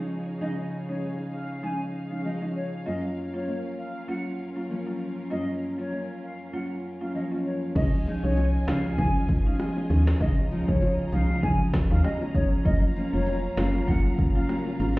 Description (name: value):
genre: dancehall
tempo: 98 BPM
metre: 4/4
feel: swing 56% on 16ths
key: Db major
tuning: A4 = 440 Hz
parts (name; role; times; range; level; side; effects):
- buzzing marimba with medium mallets; accompaniment; 0.0-15.0 s; F3 to F4; -30 LUFS; right 1 dB; none
- warm studio string section; sustained chords; 0.0-15.0 s; Db4 to Bb5; -39 LUFS; equal; sidechain pumping
- nylon-string guitar; arpeggios; 0.0-15.0 s; Gb2 to Eb4; -33 LUFS; left 2 dB; none
- silver concert flute; melody; 0.4-14.5 s; Db5 to Ab5; -35 LUFS; left 1 dB; tape echo
- woody FM bass; bass; 7.8-15.0 s; F1 to Eb2; -25 LUFS; equal; none
- afro-pop drum kit; drums; 7.8-15.0 s; crash cymbal, hi-hat, kick drum, rim click, snare drum; -26 LUFS; equal; none
- bongos; percussion; 8.4-15.0 s; none; -38 LUFS; left 3 dB; none
room: light reverb, small room ambience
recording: heard muffled through a wall, stone room reverb, EQ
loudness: -24 LUFS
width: side -20 dB against mid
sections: 0.0-7.8 A section; 7.8-15.0 B section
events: none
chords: 0.0 Dbadd9; 2.9 Gbmaj7; 7.8 Dbadd9; 12.7 Gbmaj7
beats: | 0.41 1.02 1.63 2.25 | 2.86 3.47 4.08 4.70 | 5.31 5.92 6.53 7.14 | 7.76 8.37 8.98 9.59 | 10.21 10.82 11.43 12.04 | 12.65 13.27 13.88 14.49